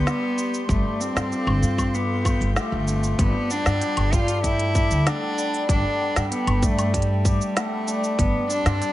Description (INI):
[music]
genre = folktronica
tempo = 96 BPM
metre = 4/4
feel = straight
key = G mixolydian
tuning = A4 = 440 Hz
[part]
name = warm cello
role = melody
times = 0.0-8.9 s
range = G3 to F4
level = -25 LUFS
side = equal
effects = none
[part]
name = warbly tape-like pad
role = sustained chords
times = 0.0-8.9 s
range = G4 to C6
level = -34 LUFS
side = right 1 dB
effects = chorus, built-in reverb
[part]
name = cimbalom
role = arpeggios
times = 0.0-8.9 s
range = G2 to G4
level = -29 LUFS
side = left 2 dB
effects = none
[part]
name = upright bass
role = bass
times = 0.0-8.8 s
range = G1 to G2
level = -23 LUFS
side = equal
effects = none
[part]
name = backwards swelling texture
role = texture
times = 0.0-3.2 s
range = G5 to G6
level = -44 LUFS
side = right 1 dB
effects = none
[part]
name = organic electronic drum kit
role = drums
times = 0.1-8.9 s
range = cabasa, hi-hat, snare drum, woodblock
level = -28 LUFS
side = equal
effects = none
[part]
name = electronic kick drum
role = drums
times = 0.7-8.3 s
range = none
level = -23 LUFS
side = equal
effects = none
[sound]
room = little or no reverb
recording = vinyl crackle, nothing above 11.0 kHz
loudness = -20 LUFS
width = side -15 dB against mid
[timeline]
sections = 0.0-3.2 A section; 3.2-8.9 B section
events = band accent 2.6-2.9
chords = 0.0 Csus2/G; 0.7 F/G; 8.2 Csus2/G